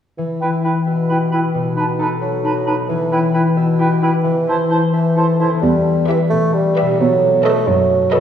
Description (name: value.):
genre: cinematic, playful, whimsical film cue.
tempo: 88 BPM (dotted quarters).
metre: 6/8.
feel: straight.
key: E minor.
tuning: A4 = 440 Hz.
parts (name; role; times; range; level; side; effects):
mellow bassoon; accompaniment; 0.2-8.2 s; B2 to A3; -18 LUFS; right 2 dB; none.
concert harp; arpeggios; 0.2-8.2 s; B2 to E5; -18 LUFS; left 4 dB; none.
mellow clarinet; second line; 0.4-5.5 s; D#4 to E4; -24 LUFS; equal; none.
mellow hollow silver concert flute; second line; 0.4-5.5 s; G5 to A5; -24 LUFS; equal; none.
warm cor anglais; second line; 0.4-5.5 s; B4 to C5; -25 LUFS; right 4 dB; none.
dark studio cello section; bass; 5.6-8.2 s; E2 to B2; -21 LUFS; right 3 dB; none.
rich studio violin section; melody; 6.1-8.2 s; D#5 to E5; -28 LUFS; left 3 dB; none.
warm studio violin section; second line; 6.1-8.2 s; B4; -25 LUFS; left 1 dB; none.
rich studio viola section; accompaniment; 6.1-8.2 s; G4 to A4; -25 LUFS; right 4 dB; none.
room: wet scoring stage reverb, RT60 1.9 s.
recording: heard from further back in the room.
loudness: -14 LUFS.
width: side -9 dB against mid.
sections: 0.2-5.6 A section; 5.6-8.2 B section.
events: none.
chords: 0.2 Em; 1.5 B7; 2.9 Em; 4.2 Am/E; 5.6 Em; 7.0 B7.